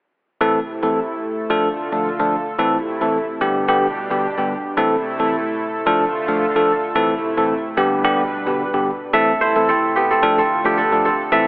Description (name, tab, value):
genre	afrobeats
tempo	110 BPM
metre	4/4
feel	swing 55% on 16ths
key	A minor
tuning	A4 = 440 Hz
part	bell-like tine electric piano	accompaniment	0.4-11.5 s	D3 to A4	-18 LUFS	equal	none
part	lush unison pad	sustained chords	0.4-11.5 s	B2 to B4	-23 LUFS	equal	chorus
part	kora	riff	9.1-11.5 s	B3 to E5	-16 LUFS	right 1 dB	tape echo
room	moderate lush hall reverb, RT60 3.1 s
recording	telephone sound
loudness	-16 LUFS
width	side -25 dB against mid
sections	0.4-11.5 A section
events	none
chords	0.4 Am; 1.5 Dm; 2.6 Am; 3.4 G; 4.8 Am; 5.9 Dm; 7.0 Am; 7.8 G; 9.1 Am; 10.2 Dm